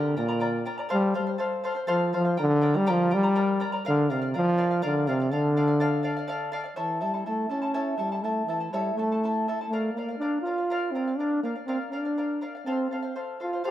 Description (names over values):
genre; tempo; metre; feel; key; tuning
andean folk, Andean ensemble; 82 BPM (dotted quarters); 6/8; straight; unclear; A4 = 439 Hz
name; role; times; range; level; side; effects
warm trombone; melody; 0.0-13.7 s; Bb2 to G4; -25 LUFS; equal; none
charango; accompaniment; 0.0-13.7 s; E4 to Bb5; -30 LUFS; left 1 dB; none
room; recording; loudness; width
moderate recital hall reverb, RT60 1.6 s; none; -24 LUFS; side -12 dB against mid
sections
0.0-6.8 A section; 6.8-13.7 B section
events
none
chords
0.0 Gm; 0.9 F; 2.4 Gm; 3.8 Bb; 5.3 Dm; 6.8 A; 9.7 Bb; 12.7 F